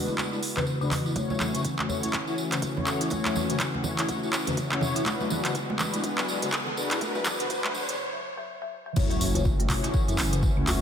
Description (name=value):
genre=afro house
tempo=123 BPM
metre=4/4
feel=swing 59% on 16ths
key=F# minor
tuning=A4 = 440 Hz
part: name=warm analog pad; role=sustained chords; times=0.0-10.8 s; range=E3 to F#4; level=-35 LUFS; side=equal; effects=chorus, sidechain pumping
part: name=mellow synth brass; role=stabs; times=0.0-10.8 s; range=G#3 to C#5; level=-33 LUFS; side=left 4 dB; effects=chorus, sidechain pumping, ping-pong delay
part: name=folk marimba with medium mallets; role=arpeggios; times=0.1-10.7 s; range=C#3 to E4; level=-33 LUFS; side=left 1 dB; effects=sidechain pumping, low-pass filter, ping-pong delay
part: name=congas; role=percussion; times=0.1-7.9 s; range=none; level=-34 LUFS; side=right 2 dB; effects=none
part: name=tambourine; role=percussion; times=0.1-10.8 s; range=none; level=-38 LUFS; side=right 2 dB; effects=none
part: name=afro-pop drum kit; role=drums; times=0.2-10.8 s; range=crash cymbal, handclaps, hi-hat, toms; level=-30 LUFS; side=equal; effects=studio reverb
part: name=electronic kick drum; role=drums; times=1.2-10.5 s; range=none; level=-29 LUFS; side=equal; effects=overdrive, high-pass filter on kick, studio reverb, high-pass filter on room
part: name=riser and impact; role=sound effects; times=4.3-10.8 s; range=none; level=-37 LUFS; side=right 1 dB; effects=none
part: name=dark detuned saw bass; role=bass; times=9.0-10.8 s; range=F#1 to F#2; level=-29 LUFS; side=equal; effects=sidechain pumping
part: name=djembe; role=percussion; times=9.3-10.8 s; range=none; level=-33 LUFS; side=left 1 dB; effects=none
room=light reverb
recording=high-pass filter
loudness=-24 LUFS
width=side -8 dB against mid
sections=0.0-1.2 A section; 1.2-9.0 B section; 9.0-10.8 C section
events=filter sweep on analog polysynth 0.0-1.2; build-up 1.2-9.0; filter sweep on marimba 1.2-9.0; riser 4.3-8.0; break 8.0-9.0; drop 9.0-10.8; impact 9.0-10.8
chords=0.0 G#m7b5; 1.2 F#m7; 5.1 G#m7b5; 9.0 F#m7